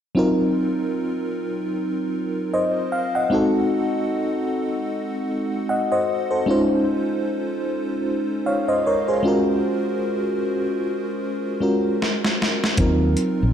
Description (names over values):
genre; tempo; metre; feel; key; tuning
R&B, neo-soul; 76 BPM; 4/4; swing 56% on 16ths; Eb dorian; A4 = 439 Hz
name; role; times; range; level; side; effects
FM electric piano with soft pad layer; accompaniment; 0.1-13.5 s; Gb3 to Gb5; -20 LUFS; equal; chorus, tremolo, slapback echo
boom bap sampler-style drum kit; drums; 12.0-13.4 s; hi-hat, kick drum, snare drum; -21 LUFS; equal; overdrive
fretless electric bass; bass; 12.8-13.5 s; Bb1 to Eb2; -19 LUFS; equal; ensemble chorus
room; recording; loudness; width
wet lush hall reverb, RT60 1.8 s, digital ambience; big arena sound; -20 LUFS; side -9 dB against mid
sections
0.2-13.5 A section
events
drum fill 12.0-12.8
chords
0.2 Ebm69; 3.3 Ab7b9; 6.5 Dbmaj9; 9.2 Gbmaj9; 12.8 Ebm69